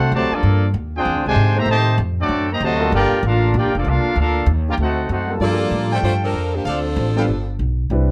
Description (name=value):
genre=jazz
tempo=193 BPM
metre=4/4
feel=swing 63% on 8ths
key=G minor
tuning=A4 = 442 Hz
part: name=clear trumpet section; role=melody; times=0.0-5.3 s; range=Bb3 to Bb5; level=-23 LUFS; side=equal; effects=none
part: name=bright trombone section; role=second line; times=0.0-5.3 s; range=C3 to G4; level=-25 LUFS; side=equal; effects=none
part: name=upright bass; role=bass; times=0.0-8.1 s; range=F1 to A2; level=-22 LUFS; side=equal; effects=none
part: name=mellow trombone section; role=sustained chords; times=0.3-3.2, 5.3-5.7 s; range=G3 to B#4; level=-28 LUFS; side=equal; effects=none
part: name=warm saxophone section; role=melody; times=5.4-7.6 s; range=F3 to D5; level=-25 LUFS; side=equal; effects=none
part: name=warm grand piano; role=accompaniment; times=5.4-8.1 s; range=F3 to B4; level=-25 LUFS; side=equal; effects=none
part: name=clear trumpet section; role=stabs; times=5.9-7.2 s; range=A4 to G5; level=-27 LUFS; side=equal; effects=none
room=light reverb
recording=close, detailed microphones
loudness=-19 LUFS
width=mono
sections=0.0-5.4 A section; 5.4-8.1 B section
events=none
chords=0.4 Gm9; 1.0 E7alt; 1.7 Am7b5; 2.3 D7b9; 2.9 Gm9; 4.8 D7b9; 5.4 Gm9; 6.7 Dm7; 7.3 G9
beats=0.12 | 0.43 0.74 1.05 1.36 | 1.67 1.98 2.29 2.60 | 2.92 3.23 3.54 3.85 | 4.16 4.47 4.79 5.10 | 5.41 5.72 6.03 6.35 | 6.66 6.97 7.28 7.59 | 7.91